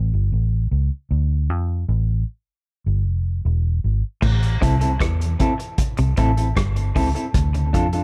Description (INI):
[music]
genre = dub reggae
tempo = 77 BPM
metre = 4/4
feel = straight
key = A minor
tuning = A4 = 439 Hz
[part]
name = vintage muted fingered electric bass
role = bass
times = 0.0-8.0 s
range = E1 to F2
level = -22 LUFS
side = equal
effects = none
[part]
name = semi-hollow electric guitar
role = riff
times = 4.2-7.1 s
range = G2 to E3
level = -30 LUFS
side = equal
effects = tape echo
[part]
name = vintage drum kit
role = drums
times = 4.2-8.0 s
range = crash cymbal, hi-hat, kick drum, rim click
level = -25 LUFS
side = equal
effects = none
[part]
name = clean electric guitar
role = accompaniment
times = 4.6-8.0 s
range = C4 to A4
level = -27 LUFS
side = equal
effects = low-pass filter, tape echo
[sound]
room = small room ambience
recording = none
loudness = -21 LUFS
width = mono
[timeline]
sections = 0.0-4.2 A section; 4.2-8.0 B section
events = break 0.0-4.2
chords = 0.0 N.C.; 1.1 Dm; 2.7 Em; 4.2 Am; 7.3 Dm